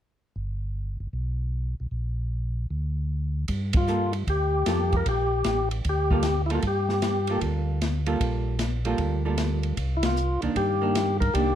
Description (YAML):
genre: soul jazz organ trio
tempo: 153 BPM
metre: 4/4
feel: swing 66% on 8ths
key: G minor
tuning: A4 = 441 Hz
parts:
  - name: mellow tonewheel organ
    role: bass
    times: 0.4-11.6 s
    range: G1 to G2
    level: -27 LUFS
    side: equal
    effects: overdrive, chorus vibrato, slow rotary speaker
  - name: open jazz drum kit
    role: drums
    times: 3.5-11.5 s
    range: hi-hat, kick drum, ride cymbal, snare drum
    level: -29 LUFS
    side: equal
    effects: none
  - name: percussive tonewheel organ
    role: melody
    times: 3.8-7.4, 10.0-11.6 s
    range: E4 to Bb4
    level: -26 LUFS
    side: left 2 dB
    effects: slow rotary speaker
  - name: archtop guitar, miked and amplified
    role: accompaniment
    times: 3.9-11.6 s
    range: Eb3 to A4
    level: -29 LUFS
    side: right 4 dB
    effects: none
room: light reverb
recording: dark, warm production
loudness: -24 LUFS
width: side -10 dB against mid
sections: 0.4-3.5 A section; 3.5-11.6 B section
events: band accent 3.7, 10.0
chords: 0.4 N.C.; 3.5 Gm9; 9.8 Cm9